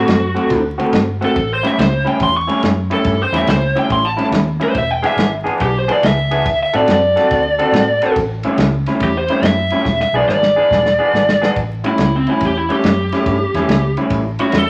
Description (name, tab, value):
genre	electric blues shuffle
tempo	141 BPM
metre	4/4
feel	swing 66% on 8ths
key	A mixolydian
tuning	A4 = 441 Hz
part	lead guitar through a small cranked amp	melody	0.0-14.7 s	C4 to C#6	-19 LUFS	equal	overdrive
part	electric guitar through a small old amp	riff	0.0-14.6 s	A2 to A4	-20 LUFS	equal	none
part	vintage muted fingered electric bass	bass	0.0-14.7 s	E1 to A2	-24 LUFS	equal	none
part	warm soul drum kit	drums	0.1-14.7 s	kick drum, ride cymbal, snare drum	-23 LUFS	equal	none
room	moderate large studio reverb, RT60 0.9 s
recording	vinyl crackle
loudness	-16 LUFS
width	mono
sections	0.0-11.6 A section; 11.6-14.7 B section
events	lead electric guitar solo 0.0-11.6; drum fill 9.9-11.6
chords	0.0 D7; 1.4 A7; 4.8 E7; 6.5 D7; 8.2 A7; 9.9 E7; 11.6 A7